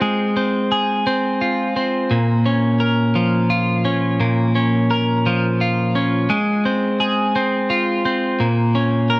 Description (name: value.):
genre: pop.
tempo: 57 BPM (dotted quarters).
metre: 6/8.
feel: straight.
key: Bb minor.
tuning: A4 = 440 Hz.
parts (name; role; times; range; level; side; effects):
twelve-string electric guitar; solo; 0.0-9.2 s; Bb2 to Bb4; -16 LUFS; equal; tape echo.
room: light reverb, digital ambience.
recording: worn, warbling old tape, cassette tape, warbly pitch drift.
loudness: -16 LUFS.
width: side -24 dB against mid.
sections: 0.0-9.2 A section.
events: none.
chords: 0.0 Fm/Ab; 2.1 Bbm; 6.3 Fm/Ab; 8.4 Bbm.